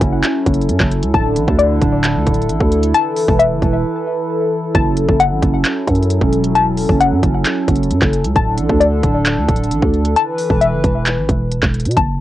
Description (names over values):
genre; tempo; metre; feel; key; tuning
hip hop, trap; 133 BPM; 4/4; half-time; F# minor; A4 = 440 Hz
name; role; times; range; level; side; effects
hollow soft pad; sustained chords; 0.0-11.9 s; D3 to B4; -18 LUFS; equal; chorus, cassette tape
warbly dusty pluck; arpeggios; 0.0-12.2 s; D5 to A5; -17 LUFS; left 5 dB; chorus, cassette tape, tape echo
growling 808-style bass; bass; 0.0-12.2 s; D1 to B2; -17 LUFS; right 1 dB; none
trap drum kit; drums; 0.0-12.1 s; handclaps, hi-hat, kick drum; -18 LUFS; right 1 dB; overdrive, cassette tape
room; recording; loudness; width
light reverb; home recording on cassette; -13 LUFS; side -14 dB against mid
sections
0.0-12.0 A section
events
break 3.8-4.7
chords
0.0 F#m7; 1.1 Dsus2; 2.9 Esus4; 4.7 F#m7; 8.4 Dsus2; 10.2 Esus4